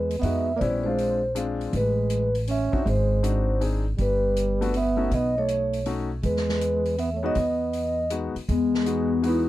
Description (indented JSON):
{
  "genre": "jazz, small-group swing and bop",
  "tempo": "160 BPM",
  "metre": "3/4",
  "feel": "swing 66% on 8ths",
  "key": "E major",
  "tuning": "A4 = 440 Hz",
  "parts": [
    { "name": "vibraphone with soft mallets", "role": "melody", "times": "0.0-9.5 s", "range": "B3 to E5", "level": "-26 LUFS", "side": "left 1 dB", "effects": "none" },
    { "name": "trombone with bucket mute", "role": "second line", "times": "0.0-9.5 s", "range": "G3 to C#4", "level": "-30 LUFS", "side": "right 6 dB", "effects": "none" },
    { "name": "upright bass", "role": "bass", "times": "0.0-9.5 s", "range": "G1 to F2", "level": "-27 LUFS", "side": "equal", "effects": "none" },
    { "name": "swinging big-band drum kit", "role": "drums", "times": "0.1-9.3 s", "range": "hi-hat, kick drum, snare drum", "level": "-34 LUFS", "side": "equal", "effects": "none" },
    { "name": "clear concert grand piano", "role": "accompaniment", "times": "0.2-9.5 s", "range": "G3 to G#4", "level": "-30 LUFS", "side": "left 5 dB", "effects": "none" }
  ],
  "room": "little or no reverb",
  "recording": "none",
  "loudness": "-22 LUFS",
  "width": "side -15 dB against mid",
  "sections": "0.0-8.5 A section; 8.5-9.5 A section",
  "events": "none",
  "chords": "0.0 Emaj7; 0.6 A#9; 1.7 Amaj9; 2.9 G#7#11; 4.0 Gmaj7; 5.1 B7; 6.2 Emaj7"
}